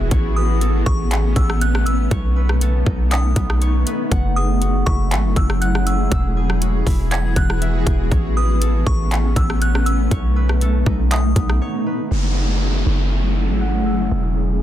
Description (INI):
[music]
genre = hip hop, atmospheric cloud-rap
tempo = 120 BPM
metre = 4/4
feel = half-time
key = F# dorian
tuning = A4 = 439 Hz
[part]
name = delicate synth tine bell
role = melody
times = 0.0-14.1 s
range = C#6 to G#6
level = -28 LUFS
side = equal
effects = chorus, low-pass filter, digital delay
[part]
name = granular cloud pad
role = sustained chords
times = 0.0-14.6 s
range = E3 to G#4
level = -23 LUFS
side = left 1 dB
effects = built-in reverb, sidechain pumping, low-pass filter
[part]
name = concert harp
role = arpeggios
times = 0.0-14.6 s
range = E3 to E6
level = -30 LUFS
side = left 2 dB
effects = low-pass filter, digital delay
[part]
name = warm 808-style bass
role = bass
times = 0.0-14.6 s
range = E1 to B1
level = -18 LUFS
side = equal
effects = none
[part]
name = trap drum kit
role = drums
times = 0.1-11.6 s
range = handclaps, hi-hat, kick drum, rim click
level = -21 LUFS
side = equal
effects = none
[part]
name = downlifter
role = sound effects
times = 12.1-14.6 s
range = none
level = -28 LUFS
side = equal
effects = none
[sound]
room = little or no reverb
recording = dense, heavily limited modern master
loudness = -16 LUFS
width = side -12 dB against mid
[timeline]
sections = 0.0-12.1 A section; 12.1-14.6 B section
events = break 11.6-12.1; filter sweep 12.1-14.6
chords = 0.1 Amaj9; 2.1 B9; 4.1 F#m9; 6.1 Eadd9; 8.1 Amaj9; 10.1 B9; 12.1 F#m9; 14.1 Eadd9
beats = | 0.12 0.62 1.12 1.62 | 2.12 2.62 3.12 3.62 | 4.12 4.62 5.12 5.62 | 6.12 6.62 7.12 7.62 | 8.12 8.62 9.12 9.62 | 10.12 10.62 11.12 11.62 | 12.12 12.62 13.12 13.62 | 14.12 14.62